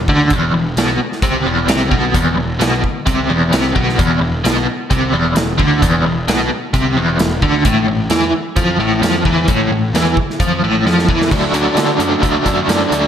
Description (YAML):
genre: classic rock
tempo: 131 BPM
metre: 4/4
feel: straight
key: unclear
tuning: A4 = 440 Hz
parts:
  - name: biting overdriven guitar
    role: riff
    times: 0.0-13.1 s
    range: E2 to D4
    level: -14 LUFS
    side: equal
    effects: tremolo
  - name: fuzz picked electric bass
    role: bass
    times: 0.0-13.1 s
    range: E1 to D3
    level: -21 LUFS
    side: equal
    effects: overdrive
  - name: big rock drum kit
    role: drums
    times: 0.1-13.0 s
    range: crash cymbal, hi-hat, kick drum, snare drum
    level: -18 LUFS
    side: equal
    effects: none
room: moderate lush hall reverb, RT60 1.6 s, studio reverb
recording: big arena sound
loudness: -12 LUFS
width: side -9 dB against mid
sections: 0.0-11.3 A section; 11.3-13.1 B section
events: drum fill 10.9-11.3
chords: 0.0 E5; 7.6 A5; 11.3 D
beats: | 0.31 0.77 1.23 1.69 | 2.15 2.61 3.07 3.53 | 3.98 4.44 4.90 5.36 | 5.82 6.28 6.73 7.19 | 7.65 8.11 8.56 9.02 | 9.48 9.94 10.39 10.85 | 11.31 11.77 12.23 12.69